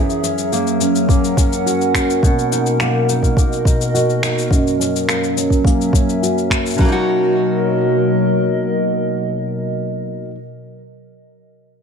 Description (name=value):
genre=folktronica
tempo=105 BPM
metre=4/4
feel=straight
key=B major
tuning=A4 = 441 Hz
part: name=warbly tape-like pad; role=sustained chords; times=0.0-9.8 s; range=B2 to F#5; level=-19 LUFS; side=equal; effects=chorus, built-in reverb
part: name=picked steel-string acoustic guitar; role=arpeggios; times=0.0-10.4 s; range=F#2 to F#4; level=-19 LUFS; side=equal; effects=low-pass filter, digital delay
part: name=electronic cabasa and finger snaps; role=drums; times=0.1-6.9 s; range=none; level=-23 LUFS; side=left 3 dB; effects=none
part: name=electronic kick drum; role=drums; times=1.1-6.9 s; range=none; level=-15 LUFS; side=equal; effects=none
room=light reverb, digital ambience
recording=none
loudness=-14 LUFS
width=side -6 dB against mid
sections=0.0-6.8 A section; 6.8-9.1 B section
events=filter sweep on steel-string acoustic guitar 0.0-6.8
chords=0.0 F#; 2.2 Bmaj7; 4.5 F#7; 6.8 Bmaj7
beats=0.51 1.08 1.65 | 2.22 2.79 3.37 3.94 | 4.51 5.08 5.65 6.22 | 6.79 7.37 7.94 8.51